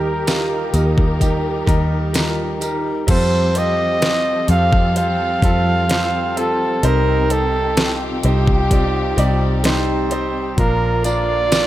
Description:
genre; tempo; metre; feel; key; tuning
pop ballad; 64 BPM; 4/4; straight; unclear; A4 = 440 Hz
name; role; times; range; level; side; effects
warm flugelhorn; melody; 0.0-11.7 s; G4 to F5; -20 LUFS; right 2 dB; none
mellow French horn section; second line; 0.0-11.7 s; C4 to G4; -27 LUFS; left 4 dB; none
clear concert grand piano; accompaniment; 0.0-11.7 s; Bb2 to D5; -23 LUFS; right 1 dB; none
warm studio string section; sustained chords; 0.0-11.7 s; C3 to Bb4; -28 LUFS; left 1 dB; none
vintage muted fingered electric bass; bass; 0.0-11.7 s; Bb1 to F2; -20 LUFS; equal; none
smooth R&B drum kit; drums; 0.3-11.7 s; crash cymbal, hi-hat, kick drum, snare drum; -19 LUFS; equal; none
tambourine; percussion; 0.3-2.8, 11.1-11.7 s; none; -31 LUFS; right 9 dB; none
room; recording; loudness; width
light reverb, small room ambience; none; -15 LUFS; side -14 dB against mid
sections
0.0-3.1 A section; 3.1-11.7 A section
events
none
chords
0.0 Eb; 3.1 Fadd9; 6.8 Cm; 10.6 Bb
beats
0.27 1.21 2.14 | 3.08 4.02 4.96 5.89 | 6.83 7.77 8.71 9.64 | 10.58 11.52

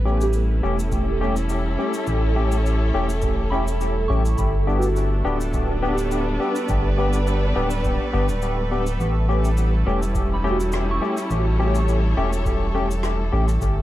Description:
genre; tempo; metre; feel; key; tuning
ambient dub; 104 BPM; 4/4; swing 54% on 16ths; A mixolydian; A4 = 439 Hz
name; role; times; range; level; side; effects
rich chamber string section; sustained chords; 0.0-13.8 s; G3 to D5; -28 LUFS; equal; none
soft dub sub bass; bass; 0.0-13.8 s; D1 to A1; -22 LUFS; equal; none
bubbling stepped-filter texture; texture; 0.0-13.8 s; A3 to A4; -32 LUFS; right 3 dB; chorus, built-in reverb
barky tine electric piano; stabs; 0.1-13.5 s; A3 to G4; -26 LUFS; left 2 dB; overdrive, analog chorus, dub echo
soft synth bell; arpeggios; 0.2-13.7 s; F#4 to C#6; -31 LUFS; right 2 dB; chorus, dub echo
cabasa and rim click; drums; 0.2-13.7 s; none; -37 LUFS; left 1 dB; dub echo
electronic kick drum; drums; 0.9-13.7 s; none; -28 LUFS; equal; none
room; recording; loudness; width
light reverb, small room ambience; echo-heavy mix; -19 LUFS; side -14 dB against mid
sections
0.0-13.8 A section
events
none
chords
0.0 A7; 4.4 G; 9.0 A7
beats
0.35 0.92 1.50 | 2.08 2.65 3.23 3.81 | 4.38 4.96 5.54 6.12 | 6.69 7.27 7.85 8.42 | 9.00 9.58 10.15 10.73 | 11.31 11.88 12.46 13.04 | 13.62

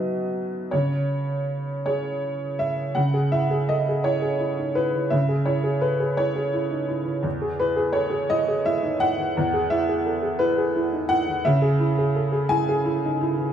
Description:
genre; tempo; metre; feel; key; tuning
neoclassical minimalist piano; 57 BPM (dotted quarters); 6/8; rubato; C# minor; A4 = 445 Hz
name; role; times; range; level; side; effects
clear upright piano; solo; 0.0-13.5 s; E2 to G#5; -21 LUFS; right 1 dB; none
room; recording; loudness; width
wet large studio reverb, RT60 1.2 s; band playing live in one room; -21 LUFS; side -9 dB against mid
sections
0.0-3.0 A section; 3.0-13.5 B section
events
none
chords
0.0 B; 0.7 C#m; 7.2 E; 11.4 C#m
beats
| 0.71 1.84 | 2.96 4.04 | 5.12 6.20 | 7.25 8.30 | 9.35 10.39 | 11.43 12.48

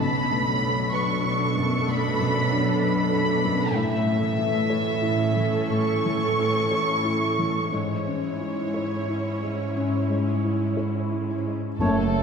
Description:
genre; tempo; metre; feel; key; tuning
cinematic; 58-65 BPM; 4/4; rubato; unclear; A4 = 440 Hz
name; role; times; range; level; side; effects
muted symphonic violin section; melody; 0.0-12.2 s; C#5 to C#6; -27 LUFS; equal; none
felt-muted upright piano; accompaniment; 0.0-12.2 s; F#1 to C#5; -28 LUFS; left 1 dB; none
muted studio viola section; accompaniment; 0.0-12.2 s; A3 to A4; -29 LUFS; right 3 dB; none
concert harp; arpeggios; 0.0-12.2 s; F#2 to E4; -30 LUFS; left 5 dB; none
muted symphonic cello section; bass; 0.0-12.2 s; F#2 to B2; -28 LUFS; right 3 dB; none
mellow hollow silver concert flute; second line; 11.8-11.9 s; A5; -31 LUFS; left 2 dB; none
mellow oboe; second line; 11.8-12.0 s; C#5; -31 LUFS; right 3 dB; none
muted studio violin section; second line; 11.8-12.2 s; A4; -32 LUFS; left 3 dB; none
warm clarinet; second line; 11.8-12.2 s; A3; -26 LUFS; right 3 dB; none
mellow French horn section; sustained chords; 11.8-12.2 s; A3 to C#4; -30 LUFS; left 1 dB; none
muted symphonic double bass section; bass; 11.8-12.2 s; F#1; -31 LUFS; right 4 dB; none
timpani; percussion; 11.8-12.2 s; F#2; -28 LUFS; equal; none
room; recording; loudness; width
wet church reverb, RT60 2.6 s; minimal, uncompressed stereo recording; -22 LUFS; side -6 dB against mid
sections
0.0-11.8 A section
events
none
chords
0.0 Bm7; 3.7 A; 7.7 C#m/G#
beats
0.93 1.87 2.81 | 3.75 4.69 5.70 6.70 | 7.71 8.74 9.76 10.78 | 11.80

